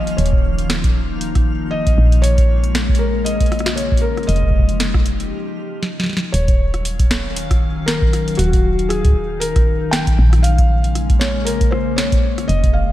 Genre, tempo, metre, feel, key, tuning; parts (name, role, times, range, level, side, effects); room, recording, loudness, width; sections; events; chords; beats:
IDM; 117 BPM; 4/4; swing 56% on 16ths; Eb minor; A4 = 440 Hz
felt-muted upright piano; melody; 0.0-12.9 s; Gb4 to G5; -24 LUFS; equal; slapback echo, digital delay
glassy FM pad; sustained chords; 0.0-12.9 s; Db3 to F5; -23 LUFS; left 3 dB; ensemble chorus, built-in reverb, vintage 12-bit sampler grit
woody FM bass; bass; 0.0-12.9 s; Eb1 to Bb1; -19 LUFS; equal
twinkling granular texture; texture; 0.0-5.3 s; F3 to F6; -37 LUFS; right 1 dB; built-in reverb
booming analog drum machine; drums; 0.1-12.7 s; hi-hat, rim click, snare drum; -23 LUFS; right 1 dB
electronic kick drum; drums; 0.3-12.7 s; -16 LUFS; equal
light reverb, digital ambience; -14 LUFS; side -14 dB against mid
0.0-6.3 A section; 6.3-12.9 A section
break 5.3-6.3; drum fill 5.8-6.3
0.0 Ebsus2; 2.0 Bbm7; 4.3 Fm9; 6.3 Ebm9; 10.2 Bbm7
| 0.18 0.70 1.21 1.72 | 2.24 2.75 3.26 3.77 | 4.29 4.80 5.31 5.83 | 6.34 6.85 7.36 7.88 | 8.39 8.90 9.41 9.93 | 10.44 10.95 11.47 11.98 | 12.49